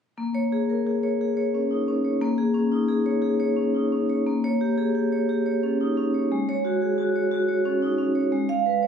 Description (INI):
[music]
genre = classical, contemporary piece for solo vibraphone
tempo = 59 BPM (dotted quarters)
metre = 6/8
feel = straight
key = Bb minor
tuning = A4 = 439 Hz
[part]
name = vibraphone with medium hard mallets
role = solo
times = 0.2-8.9 s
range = Ab3 to F5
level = -21 LUFS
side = equal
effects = none
[sound]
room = moderate stone room reverb, RT60 1.3 s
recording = recorded on a phone in the room, club reverb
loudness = -21 LUFS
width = side -7 dB against mid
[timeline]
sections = 0.2-4.3 A section; 4.3-8.9 B section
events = none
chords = 0.2 Bbm7; 4.3 Bbm6; 6.3 Ab7sus4; 8.3 Abm6